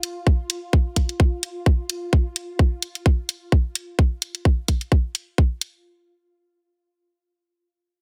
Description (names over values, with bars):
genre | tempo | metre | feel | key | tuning
minimal techno | 129 BPM | 4/4 | swing 55% on 16ths | unclear | A4 = 440 Hz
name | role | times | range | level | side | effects
electronic hi-hat | drums | 0.0-5.7 s | none | -26 LUFS | equal | none
swarming drone | texture | 0.0-2.1 s | F4 | -40 LUFS | equal | built-in reverb, sidechain pumping
electronic kick drum | drums | 0.3-5.5 s | none | -19 LUFS | equal | none
room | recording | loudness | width
digital ambience | none | -22 LUFS | mono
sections
0.0-5.8 A section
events
none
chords
none